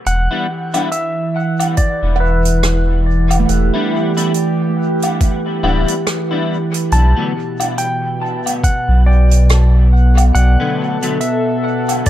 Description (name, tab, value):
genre	ambient dub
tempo	70 BPM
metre	4/4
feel	swing 58% on 16ths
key	E minor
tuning	A4 = 440 Hz
part	clean lap steel guitar	melody	0.1-12.1 s	B4 to A5	-22 LUFS	equal	dub echo
part	warbly tape-like pad	sustained chords	0.3-12.1 s	B2 to A4	-20 LUFS	equal	chorus, built-in reverb
part	warm sub bass	bass	0.1-10.6 s	D1 to B1	-11 LUFS	equal	none
part	soft-mallet drum kit	drums	0.1-12.1 s	hi-hat, rim click, woodblock	-23 LUFS	equal	dub echo
part	clean electric guitar	stabs	0.3-11.2 s	D3 to E4	-24 LUFS	left 4 dB	analog chorus, dub echo
part	electronic kick drum	drums	1.8-12.1 s	none	-14 LUFS	equal	overdrive
part	handpan	arpeggios	2.2-5.9 s	A3 to F#5	-24 LUFS	right 9 dB	dub echo
room	light reverb, studio ambience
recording	echo-heavy mix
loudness	-13 LUFS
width	side -12 dB against mid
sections	0.1-12.1 A section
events	none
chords	0.1 Em7; 6.9 Bm7